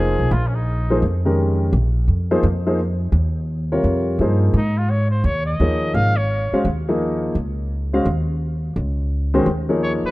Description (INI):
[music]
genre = modal jazz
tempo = 171 BPM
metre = 4/4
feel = swing 63% on 8ths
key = unclear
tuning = A4 = 443 Hz
[part]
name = clear trumpet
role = melody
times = 0.0-1.0, 4.6-6.6, 9.8-10.1 s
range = Db4 to F5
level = -25 LUFS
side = equal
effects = none
[part]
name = clear upright piano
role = accompaniment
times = 0.0-10.1 s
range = C3 to F5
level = -20 LUFS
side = left 1 dB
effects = none
[part]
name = upright bass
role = bass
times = 0.0-10.1 s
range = F1 to Ab2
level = -19 LUFS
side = equal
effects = none
[sound]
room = light reverb, small room ambience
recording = rough home demo mix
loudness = -17 LUFS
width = side -19 dB against mid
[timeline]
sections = 0.0-10.1 A section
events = none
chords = 0.0 Bb13sus4; 4.5 Absus4